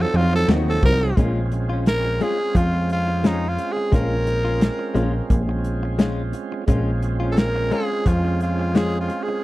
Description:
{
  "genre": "straight-eighth soul blues",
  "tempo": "87 BPM",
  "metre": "4/4",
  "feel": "swing 54% on 16ths",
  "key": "Bb minor",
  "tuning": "A4 = 440 Hz",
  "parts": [
    { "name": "raspy tenor saxophone", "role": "melody", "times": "0.0-9.4 s", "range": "Eb4 to Bb4", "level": "-24 LUFS", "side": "equal", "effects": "none" },
    { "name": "tonewheel organ", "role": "accompaniment", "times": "0.0-9.4 s", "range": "F3 to F4", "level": "-28 LUFS", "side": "right 5 dB", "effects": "slow rotary speaker, overdrive" },
    { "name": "direct-recorded clean electric guitar", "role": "stabs", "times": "0.0-9.3 s", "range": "Eb3 to Gb4", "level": "-27 LUFS", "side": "left 4 dB", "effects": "harmonic tremolo, slapback echo" },
    { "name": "plucky analog bass", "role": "bass", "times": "0.0-9.1 s", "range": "Bb1 to F2", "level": "-22 LUFS", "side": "equal", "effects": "none" },
    { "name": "warm soul drum kit", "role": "drums", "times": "0.1-9.3 s", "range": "hi-hat, kick drum, ride cymbal, snare drum", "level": "-19 LUFS", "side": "equal", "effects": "none" }
  ],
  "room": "little or no reverb",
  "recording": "dry, close 1970s-style studio recording",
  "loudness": "-18 LUFS",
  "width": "side -17 dB against mid",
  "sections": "0.0-1.2 A section; 1.2-9.4 B section",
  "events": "tenor saxophone solo 0.0-1.2",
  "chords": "0.0 F7b9; 1.2 Bbm7",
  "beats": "0.48 | 1.17 1.86 2.55 3.24 | 3.93 4.62 5.31 6.00 | 6.68 7.37 8.06 8.75"
}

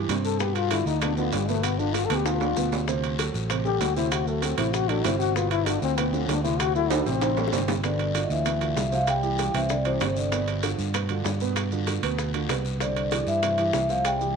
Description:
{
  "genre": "Afro-Cuban jazz",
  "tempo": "194 BPM",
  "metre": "4/4",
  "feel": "straight",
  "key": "G mixolydian",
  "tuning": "A4 = 445 Hz",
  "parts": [
    { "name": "dark baby grand piano", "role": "accompaniment", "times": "0.0-14.3 s", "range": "B2 to C5", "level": "-30 LUFS", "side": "right 12 dB", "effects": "none" },
    { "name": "fingered electric bass", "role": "bass", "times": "0.0-14.4 s", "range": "G1 to G2", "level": "-28 LUFS", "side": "equal", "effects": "none" },
    { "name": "bongos", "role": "percussion", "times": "0.1-14.4 s", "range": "none", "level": "-35 LUFS", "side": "left 13 dB", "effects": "none" },
    { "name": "guiro", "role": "percussion", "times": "0.1-14.4 s", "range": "none", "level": "-40 LUFS", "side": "left 13 dB", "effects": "none" },
    { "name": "maracas", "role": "percussion", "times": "0.1-14.4 s", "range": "none", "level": "-40 LUFS", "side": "right 15 dB", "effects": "none" },
    { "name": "timbales", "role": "percussion", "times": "0.1-14.2 s", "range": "none", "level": "-32 LUFS", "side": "right 13 dB", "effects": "none" },
    { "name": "dark trombone", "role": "second line", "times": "0.3-10.5, 12.8-14.4 s", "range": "C3 to A4", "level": "-28 LUFS", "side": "left 11 dB", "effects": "none" },
    { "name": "vibraphone with soft mallets", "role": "melody", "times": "7.8-10.5, 12.8-14.4 s", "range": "C5 to G5", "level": "-27 LUFS", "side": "equal", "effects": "none" }
  ],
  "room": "moderate plate reverb, RT60 3.5 s",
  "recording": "1960s-style stereo with parts hard left and right",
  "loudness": "-23 LUFS",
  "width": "side -6 dB against mid",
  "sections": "0.0-7.8 A section; 7.8-14.4 B section",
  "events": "trombone solo 0.0-7.8; drum fill 2.3-2.9, 6.9-7.8",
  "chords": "0.4 G7; 2.9 D7; 5.4 G7; 6.6 D7; 7.8 G7; 9.1 C; 10.3 G7; 12.8 Cadd9",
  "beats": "0.10 | 0.41 0.71 1.02 1.33 | 1.64 1.95 2.26 2.57 | 2.88 3.19 3.50 3.81 | 4.12 4.43 4.74 5.05 | 5.36 5.67 5.98 6.29 | 6.60 6.91 7.22 7.53 | 7.84 8.15 8.46 8.77 | 9.08 9.39 9.70 10.01 | 10.32 10.63 10.94 11.25 | 11.56 11.88 12.19 12.50 | 12.81 13.12 13.43 13.74 | 14.05"
}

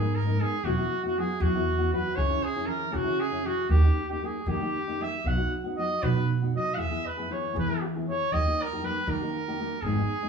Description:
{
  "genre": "mexican folk, mariachi",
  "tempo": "79 BPM (dotted quarters)",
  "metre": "6/8",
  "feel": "straight",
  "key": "unclear",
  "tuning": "A4 = 439 Hz",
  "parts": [
    { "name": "bright trumpet", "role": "melody", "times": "0.0-10.3 s", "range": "F#4 to F#5", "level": "-30 LUFS", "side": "right 1 dB", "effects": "none" },
    { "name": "nylon-string guitar", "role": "accompaniment", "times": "0.0-10.3 s", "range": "G#2 to A#4", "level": "-31 LUFS", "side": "left 1 dB", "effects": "none" },
    { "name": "upright bass", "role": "bass", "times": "0.0-10.0 s", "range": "E1 to E3", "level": "-27 LUFS", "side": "right 1 dB", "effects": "none" }
  ],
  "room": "wet studio reverb, RT60 0.9 s",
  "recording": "band playing live in one room, small room ambience",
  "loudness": "-25 LUFS",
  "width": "side -6 dB against mid",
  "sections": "0.0-10.3 A section",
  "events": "none",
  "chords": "0.0 G#madd9; 0.6 Esus2; 2.2 C#m; 3.7 D#; 5.2 B; 6.8 E; 8.3 D#",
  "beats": "| 0.64 1.40 | 2.16 2.93 | 3.69 4.47 | 5.25 6.03 | 6.80 7.56 | 8.32 9.07 | 9.82"
}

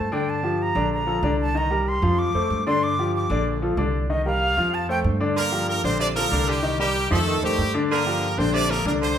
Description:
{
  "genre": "latin",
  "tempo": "189 BPM",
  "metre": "4/4",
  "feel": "straight",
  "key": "G minor",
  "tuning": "A4 = 440 Hz",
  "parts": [
    { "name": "breathy bright concert flute", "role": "melody", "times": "0.0-5.0 s", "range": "Eb5 to D6", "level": "-25 LUFS", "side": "right 1 dB", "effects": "none" },
    { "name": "clear grand piano", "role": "accompaniment", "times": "0.0-9.1 s", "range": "D3 to F5", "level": "-24 LUFS", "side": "left 3 dB", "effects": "none" },
    { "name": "upright bass", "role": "bass", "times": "0.0-9.2 s", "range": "Bb1 to G2", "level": "-26 LUFS", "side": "right 1 dB", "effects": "none" },
    { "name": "brilliant horn section", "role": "melody", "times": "5.4-9.2 s", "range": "G3 to D5", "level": "-24 LUFS", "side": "right 1 dB", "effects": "none" },
    { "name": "breathy baritone saxophone", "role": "second line", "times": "5.4-9.2 s", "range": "C3 to G3", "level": "-28 LUFS", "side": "right 5 dB", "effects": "none" }
  ],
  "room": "moderate large studio reverb, RT60 1.1 s",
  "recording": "band playing live in one room",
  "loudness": "-20 LUFS",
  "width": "side -9 dB against mid",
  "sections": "0.0-5.4 A section; 5.4-9.2 B section",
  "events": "flute solo 0.0-5.4",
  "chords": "0.3 Gm7; 0.9 Bbmaj7; 1.5 Cm7; 2.2 F; 2.8 Gm7; 3.5 Bbmaj7; 4.1 Cm7; 4.7 F; 5.4 Gm7; 6.0 Bbmaj7; 6.6 Cm7; 7.3 F7; 7.9 Gm7; 8.5 Bbmaj7",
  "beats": "| 0.28 0.60 0.91 1.23 | 1.55 1.87 2.19 2.50 | 2.82 3.14 3.46 3.77 | 4.09 4.41 4.73 5.04 | 5.36 5.68 6.00 6.31 | 6.63 6.95 7.27 7.58 | 7.90 8.22 8.54 8.86 | 9.17"
}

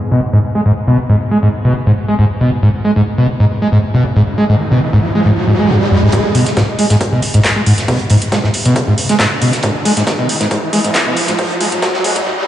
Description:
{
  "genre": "driving peak-time techno",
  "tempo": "137 BPM",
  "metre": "4/4",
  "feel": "straight",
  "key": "G# minor",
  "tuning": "A4 = 443 Hz",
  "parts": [
    { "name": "screaming distorted acid line", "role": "riff", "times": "0.1-12.3 s", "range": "F#2 to G#3", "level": "-12 LUFS", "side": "equal", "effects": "distortion, lush chorus, sidechain pumping, tape echo" },
    { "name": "riser", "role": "sound effects", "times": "3.3-12.5 s", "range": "none", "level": "-19 LUFS", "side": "right 1 dB", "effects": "none" },
    { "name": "electronic kick drum", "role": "drums", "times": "6.1-11.9 s", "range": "none", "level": "-20 LUFS", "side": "left 1 dB", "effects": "high-pass filter on kick" },
    { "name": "modern studio drum kit", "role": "drums", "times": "6.1-12.2 s", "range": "hi-hat, snare drum", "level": "-24 LUFS", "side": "right 1 dB", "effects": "sidechain pumping on hats, high-pass filter on hats, high-pass filter on snare, high-pass filter on room" },
    { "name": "techno drum kit", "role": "drums", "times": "6.1-12.2 s", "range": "handclaps, hi-hat", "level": "-19 LUFS", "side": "equal", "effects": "sidechain pumping on hats" }
  ],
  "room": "moderate huge ambient reverb, RT60 5.2 s",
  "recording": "played on a big sound system in a bare room, stone room reverb, high-pass filter, low-pass filter, nothing above 10.4 kHz",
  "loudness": "-11 LUFS",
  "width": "side -12 dB against mid",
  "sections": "0.0-6.1 A section; 6.1-12.5 B section",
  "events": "filter sweep 0.0-6.1, 6.1-12.5; riser 3.3-6.1, 6.1-12.5; build-up 6.1-12.5; filter sweep on acid bass 6.1-12.5; break 12.3",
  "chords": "none",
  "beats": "0.00 0.44 | 0.88 1.31 1.75 2.19 | 2.63 3.06 3.50 3.94 | 4.38 4.82 5.25 5.69 | 6.13 6.57 7.01 7.45 | 7.88 8.32 8.76 9.20 | 9.63 10.07 10.51 10.95 | 11.39 11.82 12.26"
}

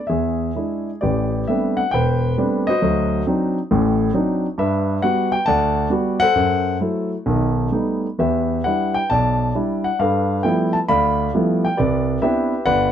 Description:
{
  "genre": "solo jazz",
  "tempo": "134 BPM",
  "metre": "4/4",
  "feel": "swing 67% on 8ths, rubato",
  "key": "A dorian",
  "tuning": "A4 = 441 Hz",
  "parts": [
    { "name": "warm grand piano", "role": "solo", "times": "0.0-12.9 s", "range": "E1 to B5", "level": "-17 LUFS", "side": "equal", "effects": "none" }
  ],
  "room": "light reverb",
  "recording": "close, detailed microphones",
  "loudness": "-17 LUFS",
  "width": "side -9 dB against mid",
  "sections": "0.0-1.0 A section; 1.0-12.9 B section",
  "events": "none",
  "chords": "0.1 E7; 1.0 Am11; 2.8 D7b9; 4.6 Gmaj7; 6.4 F#m7b5; 7.3 Baug7; 8.2 Em7; 10.0 G13; 11.8 Cmaj9",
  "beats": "0.08 0.55 | 1.02 1.48 1.93 2.38 | 2.82 3.27 3.70 4.14 | 4.58 5.03 5.47 5.91 | 6.36 6.81 7.27 7.73 | 8.20 8.65 9.11 9.55 | 10.00 10.45 10.89 11.33 | 11.78 12.22 12.65"
}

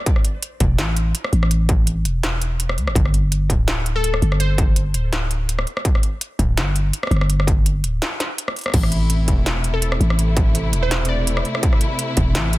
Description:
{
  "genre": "half-time drum and bass",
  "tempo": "166 BPM",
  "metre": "4/4",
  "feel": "swing 54% on 16ths, half-time",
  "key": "A minor",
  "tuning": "A4 = 438 Hz",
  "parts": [
    { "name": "electronic kick drum", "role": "drums", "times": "0.1-12.3 s", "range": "none", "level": "-18 LUFS", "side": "equal", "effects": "distortion" },
    { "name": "industrial drum kit", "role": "drums", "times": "0.1-12.6 s", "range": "crash cymbal, hi-hat, rim click, snare drum", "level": "-24 LUFS", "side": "equal", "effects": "none" },
    { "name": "growling 808-style bass", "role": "bass", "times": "0.6-12.6 s", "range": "D1 to D2", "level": "-19 LUFS", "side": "equal", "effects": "none" },
    { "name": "glassy wavetable pluck", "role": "melody", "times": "4.0-4.7, 9.7-11.4 s", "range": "A4 to D5", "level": "-28 LUFS", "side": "left 1 dB", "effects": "chorus, tape echo" },
    { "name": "rich symphonic string section", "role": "sustained chords", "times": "8.7-12.6 s", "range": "C3 to E4", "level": "-26 LUFS", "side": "left 1 dB", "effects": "sidechain pumping" }
  ],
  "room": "digital ambience",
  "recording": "dense, heavily limited modern master",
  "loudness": "-17 LUFS",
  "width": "side -18 dB against mid",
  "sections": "0.0-12.6 A section",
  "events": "break 8.0-8.7",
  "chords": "0.0 A5; 3.0 G5; 8.7 Am",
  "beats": "| 0.07 0.43 0.79 1.15 | 1.51 1.87 2.23 2.60 | 2.96 3.32 3.68 4.04 | 4.40 4.76 5.12 5.49 | 5.85 6.21 6.57 6.93 | 7.29 7.66 8.02 8.38 | 8.74 9.10 9.46 9.82 | 10.19 10.55 10.91 11.27 | 11.63 11.99 12.35"
}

